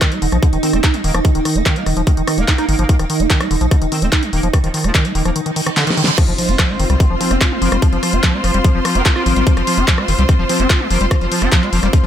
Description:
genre	psychedelic trance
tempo	146 BPM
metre	4/4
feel	straight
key	unclear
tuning	A4 = 442 Hz
part	evolving wavetable pad	sustained chords	0.0-12.1 s	C4 to Eb4	-22 LUFS	right 1 dB	ensemble chorus, built-in reverb, phaser, sidechain pumping
part	liquid acid bass	riff	0.0-12.1 s	D3 to F4	-20 LUFS	equal	chorus, auto-pan, cassette tape, sidechain pumping, tape echo
part	big-room dance drum kit	drums	0.0-12.0 s	crash cymbal, handclaps, hi-hat, rim click, snare drum	-20 LUFS	left 1 dB	none
part	electronic kick drum	drums	0.0-12.0 s	none	-14 LUFS	equal	none
part	round analog bass	bass	0.2-12.1 s	Eb1 to C2	-19 LUFS	equal	none
part	metallic wobble bass	second line	0.6-11.9 s	F3 to C4	-30 LUFS	right 2 dB	lush chorus, sidechain pumping, high-pass filter, tape echo
part	reverse cymbal and impact	sound effects	5.5-7.8 s	none	-24 LUFS	right 3 dB	none
part	bright studio string section	texture	6.2-12.1 s	F4 to C6	-21 LUFS	equal	sidechain pumping
room	light reverb, digital ambience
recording	none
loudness	-13 LUFS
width	side -10 dB against mid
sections	0.0-6.2 A section; 6.2-12.1 B section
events	filter sweep on acid bass 0.0-6.2; kick drops out 5.4-6.2; reverse cymbal 5.5-6.2; drum fill 5.8-6.2; drop 6.2-12.1; impact 6.2-7.8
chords	0.0 Eb5; 6.2 F5

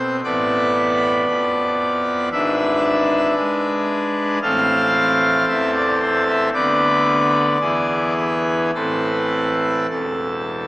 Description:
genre	classical, chorale-style piece for pipe organ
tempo	51-58 BPM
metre	4/4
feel	rubato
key	A minor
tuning	A4 = 440 Hz
part	pipe organ, full organ	solo	0.0-10.7 s	E1 to F5	-16 LUFS	equal	none
room	wet cathedral reverb, RT60 5.1 s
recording	small speaker sound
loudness	-16 LUFS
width	side -18 dB against mid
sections	0.0-10.7 A section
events	none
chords	0.2 Bm7b5/A; 2.3 E7/G#; 4.4 Am; 6.5 Bm/D; 7.6 E; 8.7 Am

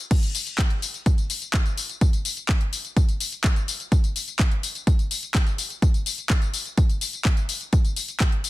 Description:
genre	EDM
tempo	126 BPM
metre	4/4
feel	straight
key	none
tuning	none
part	house drum kit	drums	0.0-8.5 s	crash cymbal, handclaps, hi-hat, tambourine	-28 LUFS	left 3 dB	overdrive, studio reverb
part	electronic kick drum	drums	0.1-8.3 s	none	-20 LUFS	equal	overdrive, studio reverb
room	little or no reverb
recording	dense, heavily limited modern master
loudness	-21 LUFS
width	side -17 dB against mid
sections	0.1-8.5 A section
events	drop 0.1-8.5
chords	none

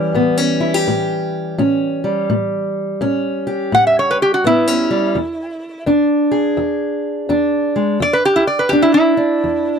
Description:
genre	acoustic country blues, solo or duo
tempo	84 BPM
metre	4/4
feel	swing 63% on 8ths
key	unclear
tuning	A4 = 439 Hz
part	lap resonator guitar	melody	0.0-9.8 s	E4 to F#5	-14 LUFS	right 1 dB	none
part	fingerpicked steel-string acoustic guitar	accompaniment	0.0-9.8 s	E2 to G#4	-16 LUFS	equal	none
room	little or no reverb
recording	dry, close 1970s-style studio recording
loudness	-14 LUFS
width	side -7 dB against mid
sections	0.0-9.8 A section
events	none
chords	0.0 A7; 5.1 E7

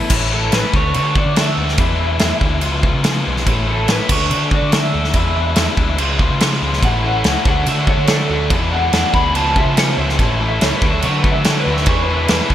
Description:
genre	indie rock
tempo	143 BPM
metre	4/4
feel	straight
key	A major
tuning	A4 = 439 Hz
part	tonewheel organ	sustained chords	0.0-12.5 s	D4 to E6	-32 LUFS	equal	none
part	biting overdriven guitar	riff	0.0-12.5 s	E2 to F#4	-21 LUFS	left 5 dB	spring reverb
part	overdriven semi-hollow guitar	riff	0.0-0.1, 6.8-12.5 s	E3 to A4	-25 LUFS	right 3 dB	wide subtle chorus
part	picked electric bass	bass	0.1-12.5 s	A1 to D3	-20 LUFS	equal	none
part	loose indie drum kit	drums	0.1-12.5 s	crash cymbal, kick drum, snare drum	-17 LUFS	equal	gated reverb
part	electric guitar through a small old amp	melody	0.3-12.5 s	A4 to B5	-22 LUFS	right 1 dB	phaser, digital delay
room	moderate lush hall reverb, RT60 2.1 s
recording	bright 1980s-style digital production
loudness	-13 LUFS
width	side -11 dB against mid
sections	0.1-12.5 A section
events	clean electric guitar solo 0.1-12.5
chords	0.1 A; 0.7 D6; 1.8 E7; 2.6 C#7; 3.5 A; 4.1 D6; 5.2 E7; 6.0 C#7; 6.8 A; 7.5 D6; 8.5 E7; 9.4 C#7; 10.2 A; 10.8 D6; 11.9 E7

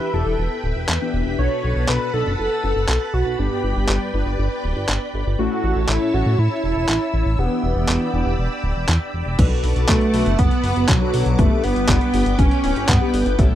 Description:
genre	italo disco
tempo	120 BPM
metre	4/4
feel	straight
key	B minor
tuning	A4 = 440 Hz
part	wide unison lead	melody	0.0-13.3 s	F#3 to C#5	-22 LUFS	right 1 dB	wide subtle chorus, cassette tape, tape echo
part	string machine, full ensemble	sustained chords	0.0-13.6 s	B4 to E6	-28 LUFS	equal	ensemble chorus
part	analog synth brass	stabs	0.0-13.6 s	G2 to B4	-26 LUFS	left 4 dB	chorus, phaser
part	chorused synth bass	bass	0.1-13.5 s	D1 to A2	-21 LUFS	equal	none
part	dusty soul sampler-style drum kit	drums	0.9-13.5 s	crash cymbal, handclaps, hi-hat	-23 LUFS	equal	none
part	electronic kick drum	drums	9.4-13.5 s	none	-18 LUFS	equal	none
room	little or no reverb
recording	dry, close 1970s-style studio recording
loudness	-17 LUFS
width	side -12 dB against mid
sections	0.0-9.4 A section; 9.4-13.6 B section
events	none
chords	0.0 Em7; 1.4 Bm7; 3.4 G; 5.4 A; 7.4 Em7; 9.4 Bm7; 11.4 G

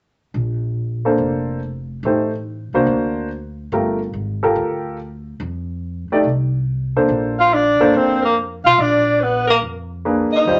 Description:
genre	jazz, small-group swing and bop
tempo	142 BPM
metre	4/4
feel	swing 67% on 8ths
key	Bb major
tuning	A4 = 440 Hz
part	upright bass	bass	0.3-10.6 s	F1 to F2	-27 LUFS	equal	none
part	warm baby grand piano	accompaniment	1.1-10.6 s	G3 to D5	-20 LUFS	equal	none
part	mellow tenor saxophone	melody	7.4-10.6 s	Bb3 to F4	-17 LUFS	equal	none
part	warm alto saxophone	second line	7.4-10.6 s	Bb4 to F5	-24 LUFS	equal	none
room	wet club reverb, RT60 0.7 s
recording	nothing above 7.9 kHz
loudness	-19 LUFS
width	mono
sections	0.3-7.1 A section; 7.1-10.6 B section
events	none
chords	0.3 Bbmaj9; 2.0 Am7b5; 2.9 D7b13; 3.7 Gm9; 5.4 F6; 7.1 Bbmaj9; 8.8 Bb7b9

